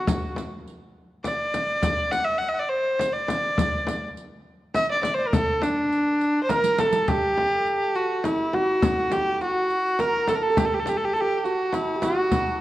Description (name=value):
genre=Persian modal ensemble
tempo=103 BPM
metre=3/4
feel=straight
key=unclear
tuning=A4 = 443 Hz
part: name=clear kamancheh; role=melody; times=0.0-12.6 s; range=D4 to F#5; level=-23 LUFS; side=equal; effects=none
part: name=frame drum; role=percussion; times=0.1-12.5 s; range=none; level=-28 LUFS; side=left 2 dB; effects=none
part: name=riq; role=percussion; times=0.1-12.5 s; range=none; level=-35 LUFS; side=right 5 dB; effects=none
part: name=santur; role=second line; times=6.5-12.6 s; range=Eb4+45c to Bb4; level=-27 LUFS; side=right 2 dB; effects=none
room=wet recital hall reverb, RT60 1.8 s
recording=worn, warbling old tape, cassette tape, warbly pitch drift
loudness=-21 LUFS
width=side -15 dB against mid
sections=0.0-7.1 A section; 7.1-12.6 B section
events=drum fill 6.5-7.1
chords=none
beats=| 0.08 0.67 1.25 | 1.83 2.41 3.00 | 3.58 4.16 4.75 | 5.33 5.91 6.49 | 7.08 7.66 8.24 | 8.82 9.41 9.99 | 10.57 11.16 11.74 | 12.32